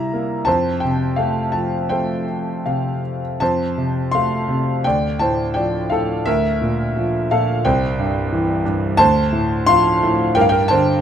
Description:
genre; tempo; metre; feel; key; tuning
classical, lyrical solo piano; 77-90 BPM; 4/4; rubato; F major; A4 = 440 Hz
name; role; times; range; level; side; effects
warm grand piano; solo; 0.0-11.0 s; C2 to C6; -16 LUFS; equal; none
room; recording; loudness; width
light reverb; close, detailed microphones; -16 LUFS; side -9 dB against mid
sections
0.0-3.4 A section; 3.4-11.0 B section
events
none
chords
0.5 F; 4.8 Dm; 6.3 Bb/D; 7.6 C; 9.0 Dm7; 10.4 Gm

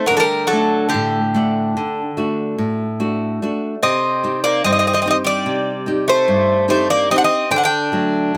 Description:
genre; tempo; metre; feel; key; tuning
greek folk, Greek bouzouki band; 146 BPM (eighths); 9/8; straight; unclear; A4 = 440 Hz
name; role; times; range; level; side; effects
Greek bouzouki; melody; 0.0-8.4 s; G4 to G5; -19 LUFS; equal; none
Greek bouzouki; second line; 0.0-8.4 s; D3 to D4; -25 LUFS; equal; none
flamenco guitar; accompaniment; 0.0-8.4 s; G2 to F#5; -23 LUFS; equal; none
room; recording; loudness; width
light reverb; close, detailed microphones; -18 LUFS; mono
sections
0.0-8.4 A section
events
none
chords
0.1 D; 3.8 Cm; 7.5 D

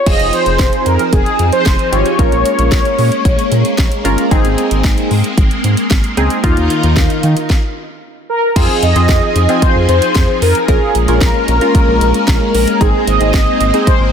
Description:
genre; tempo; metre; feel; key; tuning
synth-pop; 113 BPM; 4/4; straight; F minor; A4 = 440 Hz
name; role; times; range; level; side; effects
mellow synth brass; melody; 0.0-4.0, 8.3-14.0 s; Ab4 to Eb5; -15 LUFS; equal; chorus
warm analog keys; accompaniment; 0.1-14.1 s; Bb3 to Bb4; -19 LUFS; equal; chorus, phaser
string machine, violins; sustained chords; 0.1-14.1 s; Eb3 to Bb4; -18 LUFS; equal; ensemble chorus
round analog bass; bass; 0.1-14.1 s; F1 to Eb3; -15 LUFS; equal; none
house drum kit; drums; 0.1-14.0 s; crash cymbal, hi-hat, kick drum, snare drum; -14 LUFS; equal; none
room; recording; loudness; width
light reverb; dense, heavily limited modern master; -10 LUFS; side -7 dB against mid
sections
0.1-8.6 A section; 8.6-14.1 B section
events
stop 7.5-8.6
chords
0.1 Fm7; 2.2 Bbm7; 4.3 Abadd9; 6.4 Ebsus2; 8.6 Fm7; 10.7 Bbm7; 12.8 Abadd9

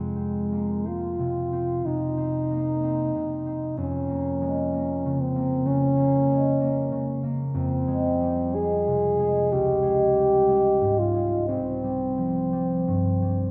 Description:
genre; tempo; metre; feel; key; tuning
classical, romantic duo for French horn and harp; 55-65 BPM; 4/4; rubato; F minor; A4 = 437 Hz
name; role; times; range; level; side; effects
mellow French horn; melody; 0.0-13.5 s; Ab3 to Ab4; -26 LUFS; equal; none
concert harp; accompaniment; 0.0-13.5 s; C2 to C4; -29 LUFS; equal; none
room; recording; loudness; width
moderate scoring stage reverb, RT60 1.7 s; none; -24 LUFS; mono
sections
0.0-13.5 A section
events
none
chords
0.0 Fm; 3.8 Bbm/F; 7.5 Fm; 9.5 Db5; 11.5 Csus4

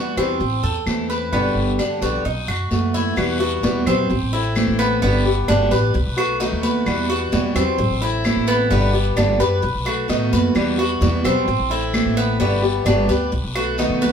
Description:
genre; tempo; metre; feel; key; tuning
latin, Cuban son and guajira; 130 BPM; 4/4; straight; E minor; A4 = 441 Hz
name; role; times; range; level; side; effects
picked steel-string acoustic guitar; accompaniment; 0.0-14.1 s; B2 to G4; -21 LUFS; left 2 dB; none
Cuban tres; arpeggios; 0.0-14.1 s; B3 to B4; -22 LUFS; right 1 dB; none
upright bass; bass; 0.2-14.1 s; G1 to A2; -23 LUFS; equal; none
claves; percussion; 0.2-13.8 s; none; -31 LUFS; left 2 dB; none
congas; percussion; 0.2-14.1 s; none; -26 LUFS; right 4 dB; none
guiro; percussion; 0.2-14.1 s; none; -33 LUFS; left 4 dB; none
room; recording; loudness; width
moderate stone room reverb, RT60 0.9 s; band playing live in one room; -17 LUFS; side -7 dB against mid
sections
0.0-3.2 A section; 3.2-14.1 B section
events
none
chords
0.4 Am; 1.3 G; 2.3 B7; 3.2 Emadd9; 4.1 Am; 5.0 G; 5.9 B7; 6.9 Emadd9; 7.8 Am; 8.7 G; 9.6 B7; 10.6 Emadd9; 11.5 Am; 12.4 G; 13.3 B7

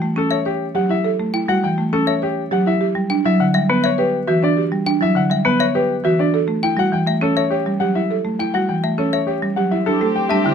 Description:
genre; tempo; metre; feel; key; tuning
classical, minimalist pattern music; 102 BPM; 3/4; straight; unclear; A4 = 441 Hz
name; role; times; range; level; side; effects
clear concert grand piano; melody; 0.0-10.5 s; G4 to G5; -22 LUFS; left 7 dB; none
buzzing marimba with hard mallets; accompaniment; 0.0-10.5 s; D3 to C#4; -19 LUFS; right 1 dB; none
trough xylophone with wooden mallets; arpeggios; 0.3-10.5 s; E5 to A5; -25 LUFS; left 7 dB; none
buzzing marimba with soft mallets; arpeggios; 0.5-10.5 s; D4 to C#5; -22 LUFS; right 6 dB; none
alto flute; second line; 9.9-10.5 s; G4; -27 LUFS; right 4 dB; none
rich studio violin section; sustained chords; 9.9-10.5 s; C4 to G4; -24 LUFS; left 2 dB; none
room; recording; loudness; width
light reverb; close, detailed microphones; -16 LUFS; side -7 dB against mid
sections
0.0-9.9 A section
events
none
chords
0.0 A7; 2.8 Em9; 6.3 A7; 9.9 Am7

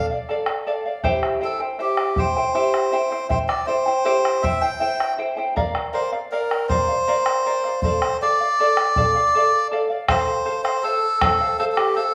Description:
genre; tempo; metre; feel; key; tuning
andean folk, Andean ensemble; 80 BPM; 3/4; straight; unclear; A4 = 440 Hz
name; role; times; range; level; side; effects
melodica; melody; 0.0-12.1 s; G4 to G5; -23 LUFS; equal; none
charango; accompaniment; 0.0-12.1 s; E4 to G5; -26 LUFS; equal; none
bombo; percussion; 0.3-11.9 s; none; -27 LUFS; equal; none
room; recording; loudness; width
wet large studio reverb, RT60 0.8 s; band playing live in one room, small room reverb; -21 LUFS; mono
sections
0.0-10.1 A section; 10.1-12.1 B section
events
none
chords
0.0 Dm; 1.0 C; 5.6 Bb; 7.8 Dm; 10.1 F

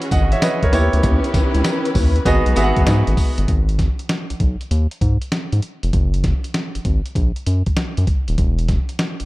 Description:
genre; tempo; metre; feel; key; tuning
R&B, new jack swing; 98 BPM; 4/4; swing 67% on 16ths; G# minor; A4 = 440 Hz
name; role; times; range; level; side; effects
bright concert grand piano; accompaniment; 0.0-3.5 s; G#3 to F#5; -21 LUFS; right 1 dB; none
warm symphonic string section; sustained chords; 0.0-3.5 s; D#3 to B4; -24 LUFS; left 1 dB; none
dusty soul sampler-style drum kit; drums; 0.0-9.3 s; hi-hat, kick drum, snare drum, tambourine; -19 LUFS; equal; none
round analog bass; bass; 0.1-9.2 s; D#1 to G#2; -18 LUFS; equal; none
cowbell; percussion; 0.4-3.1 s; none; -35 LUFS; left 5 dB; none
room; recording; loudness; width
small room ambience; dark, warm production; -16 LUFS; side -19 dB against mid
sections
0.0-3.5 A section; 3.5-9.3 B section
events
none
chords
0.0 E69; 0.7 D#7b9b13; 2.3 G#m7; 3.5 G#m; 5.9 F#add9; 8.4 N.C.

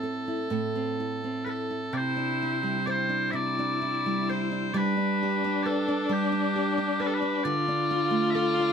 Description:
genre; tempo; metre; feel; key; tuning
celtic folk, Celtic slow air; 42-45 BPM (dotted quarters); 6/8; rubato; unclear; A4 = 440 Hz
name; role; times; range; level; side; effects
loud bright bagpipes; melody; 0.0-8.7 s; G4 to E5; -29 LUFS; left 2 dB; none
nylon-string guitar; accompaniment; 0.0-8.7 s; A2 to C5; -29 LUFS; right 2 dB; none
warm viola; second line; 2.0-8.7 s; D4 to F4; -30 LUFS; left 3 dB; none
room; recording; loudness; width
light reverb; band playing live in one room; -25 LUFS; side -7 dB against mid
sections
0.0-2.0 A section; 2.0-8.7 B section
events
none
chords
0.0 Am; 2.0 Cadd9; 4.7 G; 7.5 Dm

